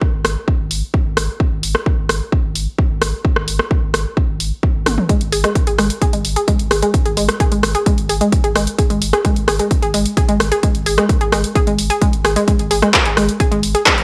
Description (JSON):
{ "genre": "driving peak-time techno", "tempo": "130 BPM", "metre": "4/4", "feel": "straight", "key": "unclear", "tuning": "A4 = 438 Hz", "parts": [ { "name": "electronic kick drum", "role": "drums", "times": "0.0-14.0 s", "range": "none", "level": "-19 LUFS", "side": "equal", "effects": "studio reverb" }, { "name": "saturated sub bass", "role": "bass", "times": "0.1-14.0 s", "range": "G#1", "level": "-25 LUFS", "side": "equal", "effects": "sidechain pumping, low-pass filter" }, { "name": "punchy analog drum machine", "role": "drums", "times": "0.2-14.0 s", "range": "handclaps, hi-hat, rim click, toms", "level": "-20 LUFS", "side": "equal", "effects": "overdrive, studio reverb, sidechain pumping on hats, sidechain pumping on toms" }, { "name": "analog pluck", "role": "riff", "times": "5.1-13.9 s", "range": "G#3 to G#4", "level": "-20 LUFS", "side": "equal", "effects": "chorus, sidechain pumping, tape echo" } ], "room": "digital ambience", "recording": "dry, gritty hardware recording, cassette tape", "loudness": "-16 LUFS", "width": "mono", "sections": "0.0-14.0 A section", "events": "drum fill 4.9", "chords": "none" }